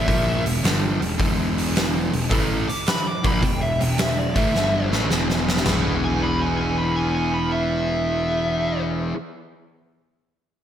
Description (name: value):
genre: blues rock power trio and southern rock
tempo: 108 BPM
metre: 4/4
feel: swing 68% on 8ths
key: E mixolydian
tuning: A4 = 440 Hz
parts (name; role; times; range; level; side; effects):
- fuzz lead guitar; melody; 0.0-8.8 s; D5 to D6; -26 LUFS; equal; distortion, slapback echo
- fuzz guitar; riff; 0.0-9.2 s; E2 to G#4; -24 LUFS; equal; distortion
- fuzz picked electric bass; bass; 0.0-9.1 s; E1 to A#1; -26 LUFS; equal; overdrive
- oversized low-tuned drum kit; drums; 0.1-5.8 s; hi-hat, kick drum, snare drum, splash cymbal, toms; -23 LUFS; equal; none
room: moderate lush hall reverb, RT60 1.5 s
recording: big arena sound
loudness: -19 LUFS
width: side -10 dB against mid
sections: 0.0-5.7 A section; 5.7-7.9 B section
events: drum fill 4.5-5.7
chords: 0.0 E5; 5.7 E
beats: 0.08 0.64 | 1.20 1.75 2.31 2.87 | 3.43 3.98 4.54 5.10 | 5.65 6.21 6.76 7.32